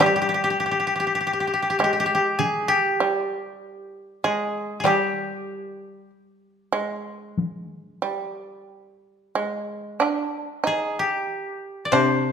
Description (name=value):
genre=japanese traditional, Japanese chamber music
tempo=44-51 BPM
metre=4/4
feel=rubato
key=G miyako bushi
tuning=A4 = 441 Hz
part: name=koto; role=melody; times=0.0-12.3 s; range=G4 to D5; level=-22 LUFS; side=left 2 dB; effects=none
part: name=shamisen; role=second line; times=0.0-12.3 s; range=G3 to Eb4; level=-25 LUFS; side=right 4 dB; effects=none
part: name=koto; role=accompaniment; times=0.0-12.3 s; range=C3 to G3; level=-26 LUFS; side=left 4 dB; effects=none
part: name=taiko ensemble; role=percussion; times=0.0-10.3 s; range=none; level=-30 LUFS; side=left 1 dB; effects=none
room=moderate recital hall reverb, RT60 1.5 s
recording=minimal, uncompressed stereo recording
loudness=-22 LUFS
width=side -7 dB against mid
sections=0.0-10.0 A section; 10.0-12.3 B section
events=none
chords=none